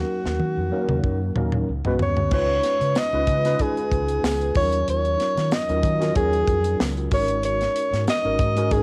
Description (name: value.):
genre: polished 1980s jazz-funk pop.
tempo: 94 BPM.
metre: 4/4.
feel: swing 54% on 16ths.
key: unclear.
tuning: A4 = 443 Hz.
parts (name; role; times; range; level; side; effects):
warm alto saxophone; melody; 0.0-8.8 s; F#4 to D#5; -26 LUFS; equal; cassette tape.
tine electric piano; accompaniment; 0.0-8.8 s; E#3 to B4; -29 LUFS; equal; ensemble chorus, cassette tape.
overdriven fingered electric bass; bass; 0.3-8.8 s; G#1 to D#3; -28 LUFS; equal; none.
tight funk drum kit; drums; 0.3-8.8 s; crash cymbal, hi-hat, kick drum, snare drum, toms; -28 LUFS; equal; cassette tape.
tambourine; percussion; 3.0-8.2 s; none; -45 LUFS; equal; none.
room: light reverb, small room ambience.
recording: home recording on cassette.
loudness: -22 LUFS.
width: mono.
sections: 0.0-2.3 A section; 2.3-8.8 B section.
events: drum fill 0.0-2.3.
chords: 0.0 D#m7; 1.7 C#7sus4; 2.3 C#9; 4.6 D#m9; 7.1 G#9sus4.